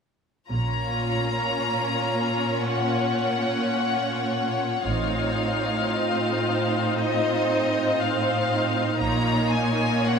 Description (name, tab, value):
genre	classical, slow romantic movement for string orchestra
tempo	54-61 BPM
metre	4/4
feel	rubato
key	Bb minor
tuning	A4 = 444 Hz
part	rich studio violin section	melody	0.5-10.2 s	Eb5 to Bb5	-27 LUFS	left 4 dB	none
part	warm studio violin section	second line	0.5-10.2 s	F4 to Db5	-28 LUFS	left 2 dB	none
part	clear studio viola section	accompaniment	0.5-10.2 s	Bb3 to Eb4	-27 LUFS	right 2 dB	none
part	clear studio double bass section	bass	0.5-10.0 s	A1 to Bb1	-31 LUFS	right 2 dB	none
part	rich studio cello section	bass	0.5-10.2 s	A2 to Bb2	-28 LUFS	right 2 dB	none
room	moderate large studio reverb, RT60 1.3 s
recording	minimal, uncompressed stereo recording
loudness	-22 LUFS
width	side -6 dB against mid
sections	0.5-10.2 A section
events	none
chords	0.5 Bbm; 4.9 F7/A; 9.0 Bbm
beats	| 0.51 1.61 2.68 3.77 | 4.86 5.95 6.99 8.00 | 9.00 10.05